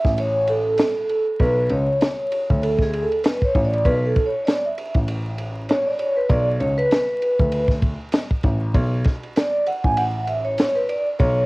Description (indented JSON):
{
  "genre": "hip hop, jazz-hop",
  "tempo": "98 BPM",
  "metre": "4/4",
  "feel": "swing 58% on 16ths",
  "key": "B dorian",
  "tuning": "A4 = 440 Hz",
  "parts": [
    { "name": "vibraphone with medium mallets", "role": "accompaniment", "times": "0.0-11.5 s", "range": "G#4 to G#5", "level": "-20 LUFS", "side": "equal", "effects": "cassette tape" },
    { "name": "dark grand piano", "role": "bass", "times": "0.0-11.5 s", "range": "A1 to D2", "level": "-23 LUFS", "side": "equal", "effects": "none" },
    { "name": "compact cocktail drum kit", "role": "drums", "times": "0.0-11.4 s", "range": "hi-hat, kick drum, ride cymbal, snare drum", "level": "-22 LUFS", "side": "equal", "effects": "none" }
  ],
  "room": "little or no reverb",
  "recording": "home recording on cassette, vinyl crackle",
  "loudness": "-18 LUFS",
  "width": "side -22 dB against mid",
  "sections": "0.0-11.5 A section",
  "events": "vibraphone solo 0.0-11.5",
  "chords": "0.0 Bm9"
}